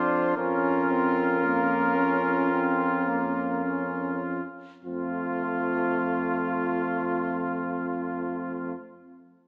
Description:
classical, brass quintet; 49-57 BPM; 4/4; rubato; F major; A4 = 439 Hz
mellow cornet; melody; 0.0-8.7 s; F4 to C5; -30 LUFS; equal
brilliant trumpet; second line; 0.0-8.7 s; F4; -30 LUFS; equal
brilliant trombone; accompaniment; 0.0-8.7 s; A3 to D4; -31 LUFS; equal
warm French horn; accompaniment; 0.0-8.7 s; C4 to Db4; -31 LUFS; equal
mellow bass trombone; bass; 0.0-8.7 s; F2; -31 LUFS; equal
wet recital hall reverb, RT60 1.6 s; small speaker sound; -24 LUFS; side -36 dB against mid
0.0-4.9 A section; 4.9-9.5 B section
slowing down 0.0-4.9
0.4 Bbm/F; 4.9 F

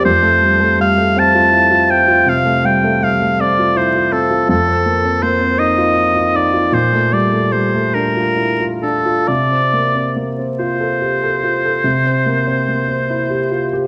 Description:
classical, romantic duo for oboe and grand piano; 43-55 BPM (dotted quarters); 12/8; rubato; A4 = 440 Hz
clear oboe; melody; 0.0-13.9 s; A4 to A5; -17 LUFS; equal
warm concert grand piano; accompaniment; 0.0-13.9 s; F2 to A4; -19 LUFS; equal
moderate recital hall reverb, RT60 1.6 s; vinyl crackle; -15 LUFS; mono
0.0-13.9 A section
0.1 F; 4.5 F7; 6.7 Bbmaj7; 9.3 F/C; 11.8 C

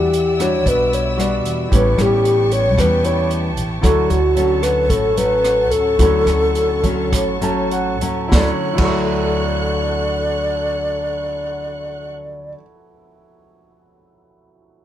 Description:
bossa nova; 97-114 BPM; 4/4; straight; D major; A4 = 440 Hz
mellow wooden-headed alto flute; melody; 0.0-12.6 s; F#4 to D5; -18 LUFS; left 1 dB
nylon-string guitar; accompaniment; 0.0-12.7 s; A2 to F#4; -22 LUFS; left 1 dB
warm concert grand piano; accompaniment; 0.0-14.8 s; E4 to C#6; -27 LUFS; right 4 dB
warm symphonic string section; sustained chords; 0.0-12.1 s; C#4 to F#6; -28 LUFS; left 2 dB
upright bass; bass; 0.0-12.5 s; A1 to E2; -22 LUFS; equal
open jazz drum kit; drums; 0.1-9.0 s; crash cymbal, hi-hat, kick drum, rim click, snare drum; -22 LUFS; right 1 dB
light reverb; dark, warm production; -15 LUFS; side -11 dB against mid
0.0-8.3 A section; 8.3-13.3 B section
slowing down 3.8-8.3; grand piano fill 7.1-8.3
0.0 Em9; 1.7 A9; 3.8 Dmaj7

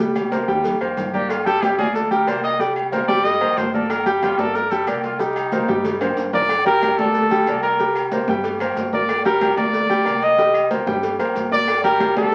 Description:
latin, salsa; 185 BPM; 4/4; straight; A4 = 440 Hz
clear baby grand piano; accompaniment; 0.0-12.3 s; G3 to G5; -23 LUFS; equal
upright bass; bass; 0.0-12.3 s; C2 to G2; -34 LUFS; equal
agogo bells and timbales; percussion; 0.2-12.3 s; -33 LUFS; equal
claves; percussion; 0.2-12.2 s; -41 LUFS; equal
congas; percussion; 0.2-12.3 s; -30 LUFS; equal
maracas; percussion; 0.2-12.3 s; -53 LUFS; equal
cowbell; percussion; 0.3-12.3 s; -32 LUFS; equal
clear trumpet; melody; 1.1-6.2 s; D4 to Eb5; -25 LUFS; equal
warm trumpet; melody; 6.3-12.3 s; A4 to Eb5; -20 LUFS; equal
wet studio reverb, RT60 0.8 s; very old 78 rpm record, vinyl crackle; -19 LUFS; mono
0.0-6.5 A section; 6.5-12.3 B section
drum fill 0.0-1.3, 5.5-6.5; trumpet solo 0.0-6.5
0.0 Cm7; 1.3 Gm; 2.6 Cm7; 3.9 C5; 10.4 Cm7; 11.7 N.C.

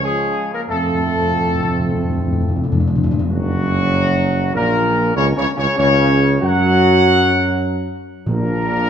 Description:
classical; 95 BPM; 4/4; uneven beats; A4 = 440 Hz
mellow trumpet section; melody; 0.0-8.9 s; Gb4 to Gb5; -19 LUFS; left 1 dB
clear trombone section; sustained chords; 0.0-8.9 s; Gb2 to Db4; -24 LUFS; right 3 dB
mellow French horn section; sustained chords; 0.0-8.9 s; Gb3 to Gb4; -22 LUFS; left 4 dB
mellow tuba; bass; 0.0-8.9 s; Gb1 to Gb2; -19 LUFS; right 3 dB
timpani; percussion; 0.7-3.3, 8.3-8.9 s; F2 to Bb2; -20 LUFS; left 2 dB
wet scoring stage reverb, RT60 1.9 s; -14 LUFS; side -8 dB against mid
0.0-3.3 A section; 3.3-8.9 B section
timpani fill 0.7-3.3
0.0 Db; 0.7 F; 3.3 Gb; 8.3 Bb

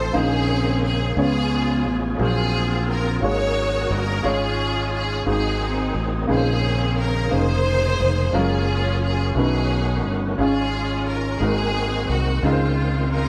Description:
slow gospel; 59 BPM (dotted quarters); 6/8; straight; Db major; A4 = 440 Hz
clear studio string section; melody; 0.0-13.3 s; Ab3 to Db5; -27 LUFS; equal
warm upright piano; accompaniment; 0.0-13.3 s; Ab2 to Db5; -28 LUFS; equal
overdriven tonewheel organ; sustained chords; 0.0-13.3 s; Db3 to C5; -31 LUFS; equal; slow rotary speaker, chorus vibrato
fingered electric bass; bass; 0.0-13.3 s; F1 to Db2; -25 LUFS; equal
wet studio ambience, RT60 0.5 s; band playing live in one room; -21 LUFS; mono
0.0-13.3 A section
0.1 Bbm11; 1.2 Db7; 2.2 Gbmaj9#11/Bb; 3.2 Ab9sus4; 4.2 Db/Ab; 5.3 Ab9; 6.3 Bbm11; 8.3 Gbmaj9; 9.4 Cb9; 10.4 Db/Ab; 11.4 Ab9; 12.4 Dbmaj9

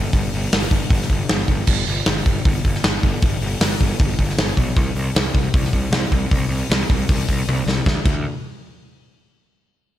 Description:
heavy metal; 155 BPM; 4/4; straight; A4 = 440 Hz
fuzz picked electric bass; bass; 0.0-8.2 s; G1 to D2; -22 LUFS; equal; overdrive
big rock drum kit; drums; 0.1-8.1 s; crash cymbal, hi-hat, kick drum, snare drum, toms; -18 LUFS; equal
light reverb; -17 LUFS; side -12 dB against mid
0.0-7.9 A section; 7.9-9.4 B section
drum fill 7.5-7.9

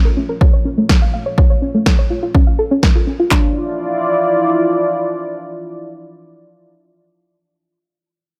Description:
melodic techno; 124 BPM; 4/4; straight; D harmonic minor; A4 = 440 Hz
dark analog pad; sustained chords; 0.0-6.7 s; Bb3 to D5; -21 LUFS; equal; chorus, sidechain pumping
soft round pluck; arpeggios; 0.1-3.5 s; A3 to F5; -21 LUFS; equal; chorus, sidechain pumping, dub echo
punchy analog drum machine; drums; 0.4-3.4 s; handclaps, kick drum, snare drum; -15 LUFS; equal; overdrive, studio reverb
electronic snare drum; drums; 0.9-2.9 s; -22 LUFS; equal; overdrive, studio reverb
light reverb, digital ambience; -15 LUFS; mono
0.0-3.3 A section; 3.3-7.2 B section
filter sweep on synth arpeggio sound 0.0-3.3
0.0 Bbm; 3.3 Dmadd9

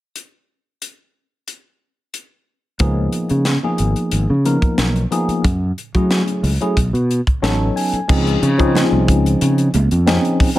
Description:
electric jazz fusion; 91 BPM; 4/4; straight; Db mixolydian; A4 = 438 Hz
crisp fusion drum kit; drums; 0.2-10.6 s; crash cymbal, hi-hat, kick drum, snare drum; -20 LUFS; equal
tine electric piano; accompaniment; 2.8-10.6 s; F3 to Ab5; -19 LUFS; left 1 dB; medium stereo tremolo, phaser
fretless electric bass; bass; 2.8-10.2 s; Ab1 to Gb3; -17 LUFS; equal
congas; percussion; 8.1-10.5 s; -24 LUFS; right 5 dB
light reverb; -14 LUFS; side -15 dB against mid
0.2-2.8 A section; 2.8-8.1 B section; 8.1-10.6 C section
tine electric piano fill 7.1-8.1
0.2 N.C.; 2.8 Db13; 5.4 Gbm9; 6.8 Cb9; 8.1 Dbmaj9

